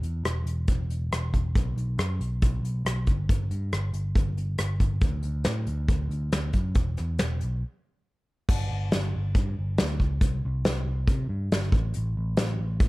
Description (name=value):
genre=folk rock and heartland rock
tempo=138 BPM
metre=4/4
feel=straight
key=unclear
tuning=A4 = 440 Hz
part: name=picked electric bass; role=bass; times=0.0-12.9 s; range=E1 to C3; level=-28 LUFS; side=equal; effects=none
part: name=soft brush drum kit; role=drums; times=0.0-12.9 s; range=crash cymbal, hi-hat, kick drum, rim click, snare drum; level=-26 LUFS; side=equal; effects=none
room=little or no reverb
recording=dark, warm production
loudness=-24 LUFS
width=side -20 dB against mid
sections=0.0-8.5 A section; 8.5-12.9 B section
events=break 7.6-8.5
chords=none